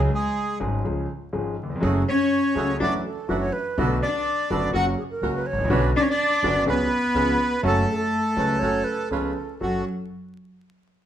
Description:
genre	tango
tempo	123 BPM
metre	4/4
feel	rubato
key	F# minor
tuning	A4 = 439 Hz
part	clear concert grand piano	accompaniment	0.0-9.8 s	F#1 to A4	-26 LUFS	equal	none
part	upright bass	bass	0.0-9.8 s	F#1 to C#2	-28 LUFS	right 1 dB	none
part	bandoneon	melody	0.1-9.8 s	F#4 to F#5	-25 LUFS	right 1 dB	none
part	warm cello	second line	0.1-9.8 s	F#3 to F#4	-25 LUFS	left 2 dB	none
part	bandoneon	stabs	1.8-9.8 s	A3 to B4	-32 LUFS	right 5 dB	none
part	breathy mellow silver concert flute	second line	3.0-9.8 s	G#4 to C#5	-30 LUFS	right 3 dB	none
room	moderate large studio reverb, RT60 1.1 s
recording	minimal, uncompressed stereo recording, vinyl crackle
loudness	-21 LUFS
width	side -10 dB against mid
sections	0.0-9.6 A section; 9.6-11.1 B section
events	none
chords	0.0 C#sus4; 0.8 C#; 1.8 F#madd9; 2.8 Dadd9/F#; 3.8 Bm7; 4.7 F#; 5.7 Bmadd9; 6.7 C#7sus4; 7.2 C#7; 7.6 F#m; 9.1 C#7; 9.6 F#m

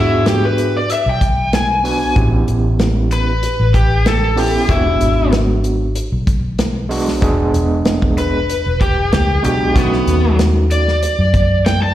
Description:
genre	straight-eighth soul blues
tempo	95 BPM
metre	4/4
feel	straight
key	E mixolydian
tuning	A4 = 443 Hz
part	overdriven slide guitar	melody	0.0-11.9 s	B3 to A5	-18 LUFS	left 1 dB	slapback echo
part	overdriven tine electric piano	accompaniment	0.0-10.9 s	G#3 to B4	-19 LUFS	right 2 dB	medium tremolo, slapback echo
part	vintage muted fingered electric bass	bass	0.0-11.9 s	E1 to G#2	-17 LUFS	equal	none
part	warm soul drum kit	drums	0.3-11.8 s	hi-hat, kick drum, snare drum	-18 LUFS	equal	slapback echo
room	light reverb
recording	live gig heard through the venue's PA, recital hall reverb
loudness	-13 LUFS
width	side -13 dB against mid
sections	0.0-11.9 A section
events	electric slide guitar solo 0.0-11.9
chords	0.0 E7 (rootless); 2.2 A7; 4.7 E7; 9.8 B7

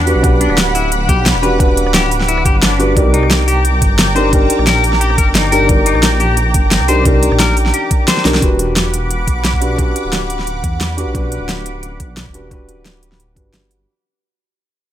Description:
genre	liquid drum and bass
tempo	176 BPM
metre	4/4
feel	swing 53% on 16ths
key	E minor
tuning	A4 = 435 Hz
part	felt-muted upright piano	accompaniment	0.0-13.9 s	D4 to F#5	-18 LUFS	equal	ping-pong delay
part	lush unison pad	sustained chords	0.0-13.8 s	F#5 to D6	-20 LUFS	equal	chorus, phaser, sidechain pumping
part	clean electric guitar	arpeggios	0.0-8.2 s	D4 to C5	-20 LUFS	left 5 dB	digital delay
part	dark detuned saw bass	bass	0.0-13.9 s	D1 to E2	-17 LUFS	equal	tube saturation
part	pop drum kit	drums	0.1-13.8 s	hi-hat, rim click, snare drum	-16 LUFS	equal	none
part	electronic kick drum	drums	0.2-13.4 s	none	-15 LUFS	equal	overdrive
room	light reverb, digital ambience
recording	none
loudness	-11 LUFS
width	side -11 dB against mid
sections	0.0-8.4 A section; 8.4-13.9 B section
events	drop 0.0-8.4; drum fill 8.2; fade-out 8.4-13.9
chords	0.0 Em7; 3.0 Cm7; 8.4 Em7

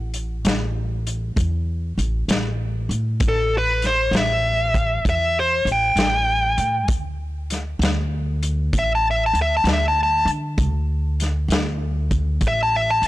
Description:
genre	slow blues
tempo	65 BPM (dotted quarters)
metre	12/8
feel	straight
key	unclear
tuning	A4 = 444 Hz
part	upright bass	bass	0.0-13.1 s	A1 to D3	-23 LUFS	equal	none
part	vintage drum kit	drums	0.1-13.1 s	hi-hat, kick drum, snare drum	-23 LUFS	equal	none
part	dark smooth lead guitar	melody	3.3-13.0 s	A4 to A5	-19 LUFS	left 1 dB	overdrive
room	little or no reverb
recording	blown-out, overdriven recording, overdrive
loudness	-18 LUFS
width	side -16 dB against mid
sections	0.0-13.1 A section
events	none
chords	0.0 A5; 6.9 D5

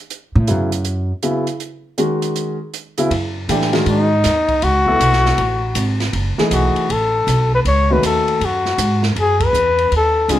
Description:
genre	modal jazz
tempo	159 BPM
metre	4/4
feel	swing 65% on 8ths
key	F# dorian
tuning	A4 = 443 Hz
part	open jazz drum kit	drums	0.1-10.4 s	hi-hat, kick drum, ride cymbal, snare drum	-25 LUFS	right 2 dB	none
part	upright bass	bass	0.4-10.4 s	F#1 to A2	-18 LUFS	right 1 dB	none
part	warm grand piano	accompaniment	0.5-10.4 s	C#3 to A4	-19 LUFS	equal	none
part	trumpet with bucket mute	melody	3.9-10.4 s	D#4 to C#5	-16 LUFS	left 2 dB	none
room	light reverb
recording	none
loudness	-15 LUFS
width	side -12 dB against mid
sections	0.0-3.1 A section; 3.1-10.4 B section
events	upright bass solo 0.0-3.1; band accent 9.3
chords	0.0 F#sus2; 3.1 F#m69

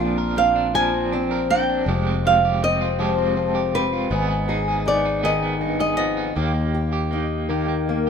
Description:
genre	acoustic folk-pop ballad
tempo	80 BPM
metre	3/4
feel	straight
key	Eb major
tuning	A4 = 440 Hz
part	flamenco guitar	melody	0.0-7.8 s	Cb5 to Ab5	-21 LUFS	right 2 dB	none
part	fingerpicked acoustic archtop guitar	accompaniment	0.0-8.1 s	Eb2 to Ab4	-24 LUFS	left 4 dB	none
part	electric guitar at the edge of break-up	arpeggios	0.0-8.1 s	F3 to Bb4	-26 LUFS	right 4 dB	tremolo
part	fretless electric bass	bass	0.0-8.1 s	F1 to Eb2	-26 LUFS	left 1 dB	none
room	moderate studio reverb, RT60 0.6 s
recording	minimal, uncompressed stereo recording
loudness	-19 LUFS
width	side -6 dB against mid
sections	0.0-8.1 A section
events	none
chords	0.0 Bbadd9; 1.9 Fmadd9; 4.1 Abm; 6.4 Eb

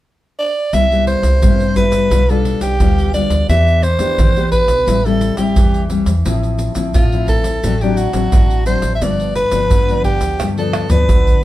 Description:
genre	samba and choro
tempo	87 BPM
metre	4/4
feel	straight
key	C major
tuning	A4 = 443 Hz
part	growling soprano saxophone	melody	0.4-11.4 s	F4 to E5	-18 LUFS	right 1 dB	none
part	nylon-string guitar	accompaniment	0.7-11.4 s	G2 to G4	-19 LUFS	left 4 dB	none
part	upright bass	bass	0.7-11.4 s	G1 to E3	-18 LUFS	equal	none
part	tube shaker, surdo, pandeiro and tamborim	percussion	0.7-11.4 s	none	-16 LUFS	right 1 dB	none
room	moderate studio reverb, RT60 0.7 s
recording	heard from further back in the room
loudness	-12 LUFS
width	side -15 dB against mid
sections	0.7-11.4 A section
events	drum fill 10.4-11.4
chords	0.0 N.C.; 0.7 Cmaj7; 2.1 G7/B; 3.5 Em7; 4.9 Am7; 6.3 Fmaj7/A; 7.6 D7/A; 9.0 G7

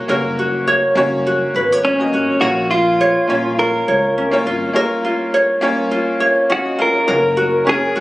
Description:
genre	acoustic pop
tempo	103 BPM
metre	4/4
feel	swing 55% on 16ths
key	F# major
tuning	A4 = 437 Hz
part	bright upright piano	accompaniment	0.0-8.0 s	A#3 to E#5	-20 LUFS	equal	none
part	ukulele	accompaniment	0.0-8.0 s	C#4 to C#5	-17 LUFS	equal	none
part	upright bass	bass	0.0-8.0 s	F#1 to C#2	-26 LUFS	equal	none
part	direct-recorded clean electric guitar	melody	1.8-8.0 s	C#4 to A#4	-17 LUFS	equal	none
part	shimmering ambient pad	sustained chords	7.6-8.0 s	C#3 to F#4	-40 LUFS	equal	none
room	moderate plate reverb, RT60 2.9 s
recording	recorded on a phone in the room, club ambience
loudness	-14 LUFS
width	side -18 dB against mid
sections	0.0-7.1 A section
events	none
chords	0.0 F#; 2.4 A#m; 7.1 F#

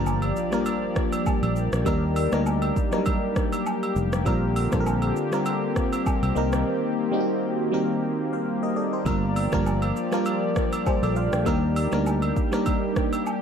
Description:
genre	afrobeats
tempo	100 BPM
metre	4/4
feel	swing 55% on 16ths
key	unclear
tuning	A4 = 439 Hz
part	FM electric piano	accompaniment	0.0-13.4 s	Gb3 to G5	-26 LUFS	equal	chorus, phaser
part	warm analog pad	sustained chords	0.0-13.4 s	D3 to D5	-28 LUFS	left 1 dB	chorus
part	fingered electric bass	bass	0.0-12.3 s	F1 to Eb2	-25 LUFS	equal	none
part	impact	sound effects	0.3-1.9 s	none	-42 LUFS	equal	none
part	afro-pop drum kit	drums	0.1-13.4 s	hi-hat, kick drum, rim click, shaker	-28 LUFS	equal	vintage 12-bit sampler grit
part	woodblock and agogo bells	percussion	0.1-13.4 s	none	-33 LUFS	right 4 dB	none
room	moderate plate reverb, RT60 1.5 s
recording	dreamy mix soaked in reverb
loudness	-22 LUFS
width	side -7 dB against mid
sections	0.0-13.4 A section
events	impact 0.0-1.9; drums muted 6.7-9.1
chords	0.0 Gm7; 1.9 Ebmaj7; 4.3 Bb69; 6.4 Cm7; 9.1 Gm7; 11.5 Ebmaj7

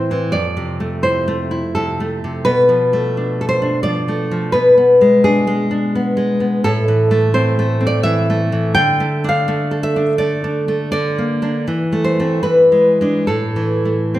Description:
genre	romantic piece for solo classical guitar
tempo	69-87 BPM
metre	3/4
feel	rubato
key	A minor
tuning	A4 = 440 Hz
part	nylon-string guitar	solo	0.0-14.2 s	F2 to G5	-14 LUFS	equal	none
room	wet recital hall reverb, RT60 1.3 s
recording	recorded in a church or concert hall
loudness	-14 LUFS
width	side -14 dB against mid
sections	0.0-14.2 A section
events	none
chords	0.3 Fmaj7; 2.5 Bm7b5; 4.5 Bm6; 6.6 Am; 8.8 D5; 10.9 Bb/D; 11.7 Am/E; 12.4 E7; 13.3 A5

